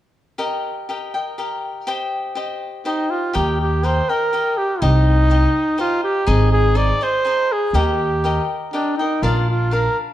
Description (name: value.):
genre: mexican folk, mariachi.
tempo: 122 BPM.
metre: 3/4.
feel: straight.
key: Eb major.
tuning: A4 = 439 Hz.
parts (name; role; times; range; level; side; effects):
cavaquinho; accompaniment; 0.4-10.1 s; D4 to G5; -24 LUFS; left 3 dB; none.
warm trumpet; melody; 2.9-10.0 s; D4 to D5; -19 LUFS; right 1 dB; none.
upright bass; bass; 3.4-9.9 s; Ab1 to Eb2; -17 LUFS; equal; none.
room: light reverb.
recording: dark, warm production.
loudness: -17 LUFS.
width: side -13 dB against mid.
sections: 0.4-3.3 A section; 3.3-10.1 B section.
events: none.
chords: 0.4 Eb; 1.9 Cm; 3.3 Eb; 4.8 Cm; 6.3 Ab; 7.7 Eb; 9.2 Bb.